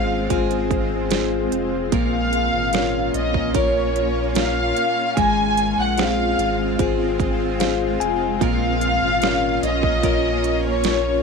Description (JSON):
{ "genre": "pop ballad", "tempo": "74 BPM", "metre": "4/4", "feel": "straight", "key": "Bb minor", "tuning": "A4 = 442 Hz", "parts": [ { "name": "dark studio violin section", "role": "melody", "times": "0.0-11.2 s", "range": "Db5 to Ab5", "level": "-22 LUFS", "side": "equal", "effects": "none" }, { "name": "bell-like tine electric piano", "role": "accompaniment", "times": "0.0-11.2 s", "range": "Ab3 to Ab5", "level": "-24 LUFS", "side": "left 14 dB", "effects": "none" }, { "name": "shimmering ambient pad", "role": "sustained chords", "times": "0.0-11.2 s", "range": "Ab3 to F4", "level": "-26 LUFS", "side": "right 1 dB", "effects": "chorus, built-in reverb" }, { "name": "picked steel-string acoustic guitar", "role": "arpeggios", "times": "0.0-11.2 s", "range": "Bb2 to Bb4", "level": "-29 LUFS", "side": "right 13 dB", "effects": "none" }, { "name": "warm sub bass", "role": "bass", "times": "0.0-11.2 s", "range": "F1 to Bb1", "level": "-27 LUFS", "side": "right 1 dB", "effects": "none" }, { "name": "pop drum kit", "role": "drums", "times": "0.3-11.0 s", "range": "hi-hat, kick drum, snare drum", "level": "-24 LUFS", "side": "right 6 dB", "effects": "overdrive" } ], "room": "light reverb, digital ambience", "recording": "1960s-style stereo with parts hard left and right", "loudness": "-18 LUFS", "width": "side -5 dB against mid", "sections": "0.0-11.2 A section", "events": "tine electric piano fill 7.2-8.4", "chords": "0.0 Fm/Ab; 1.9 Bbm; 5.2 Fm/Ab; 8.4 Bbm", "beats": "0.30 1.11 | 1.93 2.74 3.55 4.36 | 5.17 5.98 6.79 7.60 | 8.41 9.22 10.03 10.85" }